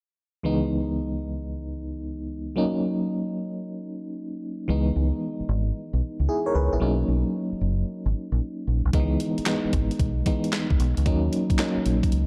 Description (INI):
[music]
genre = R&B, new jack swing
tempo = 113 BPM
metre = 4/4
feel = swing 67% on 16ths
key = C# dorian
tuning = A4 = 439 Hz
[part]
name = FM electric piano with tremolo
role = accompaniment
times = 0.4-12.3 s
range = C#2 to C#5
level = -29 LUFS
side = equal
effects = none
[part]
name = deep dub fingered electric bass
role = bass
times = 4.7-12.3 s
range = F#1 to D#2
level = -26 LUFS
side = equal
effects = none
[part]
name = clean 12-bit digital drum machine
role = drums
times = 8.9-12.3 s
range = handclaps, hi-hat, kick drum, snare drum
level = -28 LUFS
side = equal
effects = overdrive
[sound]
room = moderate plate reverb, RT60 2.1 s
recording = dark, warm production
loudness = -26 LUFS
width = mono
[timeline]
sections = 0.4-8.9 A section; 8.9-12.3 B section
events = none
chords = 0.4 C#m7; 2.6 D#m7; 4.7 C#m7; 6.8 Bmaj7; 8.9 C#m7; 11.1 D#m7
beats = | 0.44 0.97 1.50 2.03 | 2.56 3.10 3.62 4.16 | 4.69 5.22 5.75 6.28 | 6.81 7.34 7.87 8.40 | 8.94 9.47 10.00 10.53 | 11.06 11.59 12.12